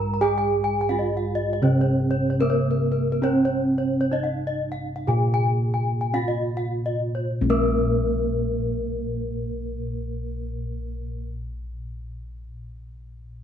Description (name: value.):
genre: Balinese gamelan.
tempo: 50-90 BPM.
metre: 4/4.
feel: straight.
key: Bb slendro.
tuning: A4 = 441 Hz.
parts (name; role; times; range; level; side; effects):
gamelan-type bronze metallophone; melody; 0.0-11.3 s; Bb3 to Bb4; -28 LUFS; right 5 dB; none.
gamelan-type bronze metallophone; arpeggios; 0.0-11.3 s; Bb4 to Bb5; -27 LUFS; left 4 dB; none.
gamelan-type bossed gongs; bass; 0.0-11.2 s; Bb1 to Ab4-45c; -25 LUFS; equal; none.
room: wet stone room reverb, RT60 1.0 s.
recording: band playing live in one room, nothing above 10.5 kHz.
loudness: -21 LUFS.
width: side -9 dB against mid.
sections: 0.0-7.3 A section; 7.3-12.1 B section.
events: slowing down 0.2-7.3.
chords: none.